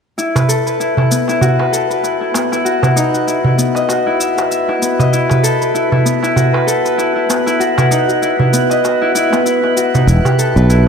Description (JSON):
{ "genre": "organic downtempo", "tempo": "97 BPM", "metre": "4/4", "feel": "swing 57% on 16ths", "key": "unclear", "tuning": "A4 = 441 Hz", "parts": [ { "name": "Celtic harp", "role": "arpeggios", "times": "0.2-10.9 s", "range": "B3 to E5", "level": "-14 LUFS", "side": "left 3 dB", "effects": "low-pass filter, tape echo" }, { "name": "shaker", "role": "drums", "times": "0.2-10.8 s", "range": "none", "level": "-23 LUFS", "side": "left 2 dB", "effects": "none" }, { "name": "drifting glass-harmonics texture", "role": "texture", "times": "0.7-10.9 s", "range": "B4", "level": "-20 LUFS", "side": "right 3 dB", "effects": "chorus, built-in reverb" }, { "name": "darbuka", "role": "percussion", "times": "0.4-10.4 s", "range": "none", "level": "-16 LUFS", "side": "right 2 dB", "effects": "none" }, { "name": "sustaining fretless electric bass", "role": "bass", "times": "10.1-10.9 s", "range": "E1 to B1", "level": "-9 LUFS", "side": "equal", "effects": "tube saturation" } ], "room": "moderate lush hall reverb, RT60 2.2 s", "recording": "none", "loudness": "-12 LUFS", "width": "side -6 dB against mid", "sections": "0.2-10.9 A section", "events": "none", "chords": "0.2 Esus2; 10.1 Em", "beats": "| 0.18 0.80 1.42 2.04 | 2.66 3.27 3.89 4.51 | 5.13 5.75 6.37 6.99 | 7.60 8.22 8.84 9.46 | 10.08 10.70" }